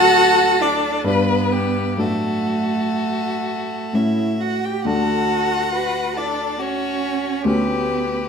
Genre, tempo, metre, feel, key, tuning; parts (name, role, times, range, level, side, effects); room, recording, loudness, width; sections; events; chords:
classical, slow romantic movement for piano quartet; 61-72 BPM; 3/4; rubato; D major; A4 = 441 Hz
rich violin; melody; 0.0-8.3 s; F#4 to B4; -23 LUFS; left 8 dB
clear violin; second line; 0.0-8.3 s; A4 to G5; -24 LUFS; left 4 dB
rich cello; second line; 0.0-8.3 s; A3 to G4; -22 LUFS; right 8 dB
warm baby grand piano; accompaniment; 0.0-8.3 s; D2 to D5; -23 LUFS; left 2 dB
wet recital hall reverb, RT60 1.3 s; -17 LUFS; side -6 dB against mid
0.0-8.3 A section
0.0 D; 1.1 G; 2.0 D/A; 3.9 A; 4.9 D; 7.5 A7/D